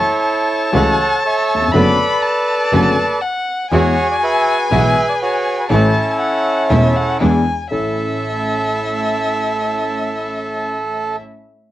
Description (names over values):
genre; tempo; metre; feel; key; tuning
tango; 121 BPM; 4/4; rubato; A major; A4 = 436 Hz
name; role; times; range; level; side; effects
bandoneon; melody; 0.0-11.2 s; C#4 to F#5; -18 LUFS; right 2 dB; cassette tape
warm violin; second line; 0.0-11.2 s; E5 to B5; -20 LUFS; left 3 dB; cassette tape
warm concert grand piano; accompaniment; 0.7-11.2 s; E1 to A4; -20 LUFS; left 3 dB; cassette tape
rich chamber string section; stabs; 0.7-11.2 s; G#3 to A4; -24 LUFS; right 2 dB; cassette tape
clear double bass; bass; 0.7-7.9 s; E1 to E2; -19 LUFS; right 1 dB; none
room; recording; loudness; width
moderate studio reverb, RT60 0.5 s; home recording on cassette; -14 LUFS; side -14 dB against mid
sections
0.0-7.7 A section; 7.7-11.7 B section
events
none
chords
0.0 F#m7; 1.7 Bm7/F#; 3.7 Eadd9; 5.7 A; 7.2 E7; 7.7 A